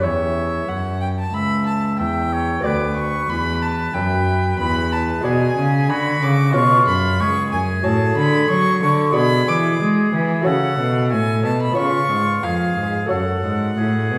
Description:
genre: classical, baroque-style sonata movement with continuo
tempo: 92 BPM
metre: 4/4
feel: straight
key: B minor, F# minor from 5.3 s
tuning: A4 = 442 Hz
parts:
  - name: warm violin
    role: melody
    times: 0.0-14.2 s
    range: E5 to D6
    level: -25 LUFS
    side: equal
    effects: none
  - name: warm oboe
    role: second line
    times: 0.0-14.2 s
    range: E#4 to E5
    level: -28 LUFS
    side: equal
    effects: none
  - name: lute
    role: accompaniment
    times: 0.0-14.2 s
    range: D2 to D5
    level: -25 LUFS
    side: equal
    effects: none
  - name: rich cello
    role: bass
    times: 0.0-14.2 s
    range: C#2 to G#3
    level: -23 LUFS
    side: equal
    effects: none
room: wet recital hall reverb, RT60 1.3 s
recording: heard from further back in the room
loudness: -19 LUFS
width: mono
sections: 0.0-14.2 A section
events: none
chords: 0.0 C#dim/E; 2.6 Bm/D; 5.3 G#m7b5/B; 6.6 C#7; 7.9 F#m/A; 9.2 G#m7b5/B; 10.5 F#m; 11.8 C#7; 13.1 F#m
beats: | 0.03 0.69 1.34 1.99 | 2.65 3.30 3.95 4.60 | 5.25 5.90 6.55 7.20 | 7.85 8.50 9.15 9.81 | 10.46 11.12 11.78 12.44 | 13.11 13.78

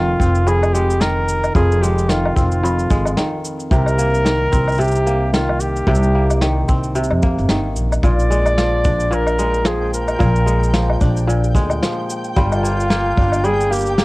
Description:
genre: folktronica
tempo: 111 BPM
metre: 4/4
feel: swing 56% on 16ths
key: C minor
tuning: A4 = 440 Hz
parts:
  - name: warm flugelhorn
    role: melody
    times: 0.0-14.0 s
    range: F4 to D5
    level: -20 LUFS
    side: equal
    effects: cassette tape
  - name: kora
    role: arpeggios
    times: 0.0-14.0 s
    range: F2 to G4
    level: -21 LUFS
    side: equal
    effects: vintage 12-bit sampler grit, cassette tape
  - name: upright bass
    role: bass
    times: 0.0-14.0 s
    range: F1 to F2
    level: -18 LUFS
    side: equal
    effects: tube saturation
  - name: cabasa, woodblock and snare drum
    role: drums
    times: 0.2-14.0 s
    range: none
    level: -22 LUFS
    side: equal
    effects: cassette tape
  - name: kick drum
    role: drums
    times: 0.2-13.3 s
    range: none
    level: -18 LUFS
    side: equal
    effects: cassette tape
  - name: flickering grainy texture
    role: texture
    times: 9.0-14.0 s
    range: G5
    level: -32 LUFS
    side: right 1 dB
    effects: built-in reverb, cassette tape
room: studio reverb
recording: home recording on cassette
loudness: -14 LUFS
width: side -21 dB against mid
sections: 0.0-14.0 A section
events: none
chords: 0.0 Fm7; 3.7 Cm7; 8.0 Bb7; 12.4 Gm7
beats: 0.47 1.01 | 1.55 2.09 2.63 3.17 | 3.71 4.25 4.79 5.33 | 5.88 6.42 6.96 7.50 | 8.04 8.58 9.12 9.66 | 10.20 10.74 11.28 11.82 | 12.36 12.90 13.44 13.98

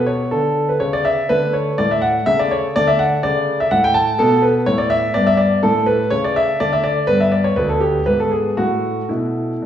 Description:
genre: classical-period piano sonatina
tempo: 123 BPM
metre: 3/4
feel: rubato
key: unclear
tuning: A4 = 439 Hz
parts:
  - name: warm concert grand piano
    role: solo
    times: 0.0-9.7 s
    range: D2 to A5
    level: -15 LUFS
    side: equal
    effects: none
room: wet stone room reverb, RT60 1.2 s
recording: heard from further back in the room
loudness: -15 LUFS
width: side -10 dB against mid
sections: 0.0-9.7 A section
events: none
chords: 0.0 Bm; 1.3 D5; 2.3 A/C#; 2.8 D5; 4.2 Aadd9; 5.1 G; 5.6 A; 6.6 D5; 7.1 G; 8.1 G#m; 8.6 A5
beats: 0.32 0.81 | 1.30 1.78 2.27 | 2.76 3.24 3.72 | 4.20 4.67 5.15 | 5.63 6.11 6.60 | 7.08 7.57 8.06 | 8.57 9.10 9.62

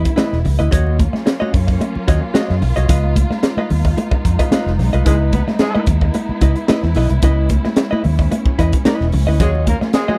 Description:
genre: funk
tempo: 111 BPM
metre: 4/4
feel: straight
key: unclear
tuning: A4 = 439 Hz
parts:
  - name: vintage hollow-body jazz guitar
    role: accompaniment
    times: 0.0-10.2 s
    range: E4 to D#5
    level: -24 LUFS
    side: equal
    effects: none
  - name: warm studio string section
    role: sustained chords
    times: 0.0-10.2 s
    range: E3 to E#4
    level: -28 LUFS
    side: equal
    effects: none
  - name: vintage muted fingered electric bass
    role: bass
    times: 0.0-9.7 s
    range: E1 to F#2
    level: -18 LUFS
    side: equal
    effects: none
  - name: crisp fusion drum kit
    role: drums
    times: 0.1-10.1 s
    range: hi-hat, kick drum, snare drum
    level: -20 LUFS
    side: equal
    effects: none
  - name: congas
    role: percussion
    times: 0.2-10.2 s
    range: none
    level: -24 LUFS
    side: equal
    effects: none
  - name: dark horn section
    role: second line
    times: 5.1-5.8, 9.4-10.2 s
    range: G#3 to B4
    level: -25 LUFS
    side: equal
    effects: none
room: little or no reverb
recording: none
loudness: -16 LUFS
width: mono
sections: 0.0-10.2 A section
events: none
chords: 0.0 C#m9; 0.7 D#m7; 2.9 C#9; 5.1 C#m9; 9.4 D#m7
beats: 0.18 | 0.72 1.26 1.81 2.35 | 2.89 3.43 3.98 4.52 | 5.06 5.60 6.14 6.69 | 7.23 7.77 8.31 8.86 | 9.40 9.94

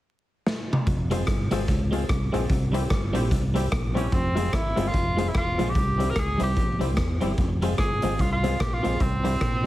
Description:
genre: ska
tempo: 147 BPM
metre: 4/4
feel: swing 60% on 8ths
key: F harmonic minor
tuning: A4 = 440 Hz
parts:
  - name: raw garage drum kit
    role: drums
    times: 0.5-9.5 s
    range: hi-hat, kick drum, rim click, snare drum, toms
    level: -26 LUFS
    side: equal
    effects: none
  - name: fingered electric bass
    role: bass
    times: 0.9-9.6 s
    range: E1 to E2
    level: -27 LUFS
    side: equal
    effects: none
  - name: clean electric guitar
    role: accompaniment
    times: 1.1-9.7 s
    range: G3 to Ab4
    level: -31 LUFS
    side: equal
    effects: none
  - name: honky-tonk upright piano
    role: stabs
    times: 1.1-9.7 s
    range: C4 to C5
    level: -32 LUFS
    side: left 3 dB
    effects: dub echo
  - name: warm tenor saxophone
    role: melody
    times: 4.0-9.7 s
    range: C4 to Bb4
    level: -28 LUFS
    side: right 1 dB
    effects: none
room: light reverb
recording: heavily compressed radio sound, multiband compression, vinyl crackle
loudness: -22 LUFS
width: side -15 dB against mid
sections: 0.9-4.1 A section; 4.1-9.7 B section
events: drum fill 0.5-0.9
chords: 0.0 N.C.; 0.9 Fm; 2.5 C; 4.1 Fm; 5.8 C; 7.4 Fm; 9.0 C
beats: 0.05 0.46 | 0.87 1.27 1.68 2.09 | 2.49 2.90 3.31 3.71 | 4.12 4.53 4.94 5.34 | 5.75 6.16 6.57 6.97 | 7.38 7.79 8.19 8.60 | 9.01 9.41

